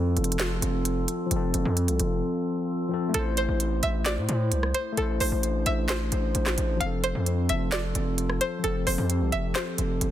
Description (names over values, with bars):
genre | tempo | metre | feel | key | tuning
hip hop, trap | 131 BPM | 4/4 | half-time | A minor | A4 = 441 Hz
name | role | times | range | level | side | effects
overdriven tine electric piano | accompaniment | 0.0-10.1 s | F3 to C5 | -30 LUFS | left 5 dB | none
glass harmonica | sustained chords | 0.0-10.1 s | A3 to C5 | -33 LUFS | right 2 dB | stereo widening
distorted 808-style bass | bass | 0.0-10.1 s | F1 to A2 | -27 LUFS | right 1 dB | distortion
trap drum kit | drums | 0.2-10.1 s | handclaps, hi-hat, rim click, snare drum | -30 LUFS | right 2 dB | none
string-like resonator pluck | melody | 3.1-10.1 s | A4 to F5 | -30 LUFS | equal | chorus, tape echo
room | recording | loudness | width
digital ambience | dense, heavily limited modern master | -24 LUFS | side -12 dB against mid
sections
0.0-3.1 A section; 3.1-10.1 B section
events
break 2.2-3.1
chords
0.0 F; 3.1 Am; 6.8 F